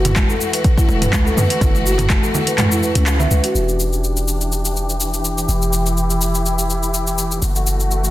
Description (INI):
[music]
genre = afro house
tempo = 124 BPM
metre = 4/4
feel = swing 54% on 16ths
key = E minor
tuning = A4 = 444 Hz
[part]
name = clear chamber string section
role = sustained chords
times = 0.0-8.1 s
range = E3 to G4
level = -23 LUFS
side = left 1 dB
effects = sidechain pumping, low-pass filter
[part]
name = marimba with soft mallets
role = arpeggios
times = 0.0-3.5 s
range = C#4 to E5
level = -22 LUFS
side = equal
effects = sidechain pumping, dub echo
[part]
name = warm 808-style bass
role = bass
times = 0.0-8.1 s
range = E1 to F#2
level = -19 LUFS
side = equal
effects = tube saturation, sidechain pumping
[part]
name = deep house drum kit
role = drums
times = 0.1-8.1 s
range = handclaps, hi-hat, shaker, toms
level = -21 LUFS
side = left 1 dB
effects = overdrive
[part]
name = congas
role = percussion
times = 0.1-3.4 s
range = none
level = -23 LUFS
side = right 2 dB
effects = none
[part]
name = electronic kick drum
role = drums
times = 0.2-2.2 s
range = none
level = -16 LUFS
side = equal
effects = overdrive
[sound]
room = light reverb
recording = dense, heavily limited modern master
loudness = -15 LUFS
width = side -15 dB against mid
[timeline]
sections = 0.0-3.5 A section; 3.5-8.1 B section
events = kick drops out 2.6-3.5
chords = 0.0 F#m7; 3.5 Em7; 7.4 F#m7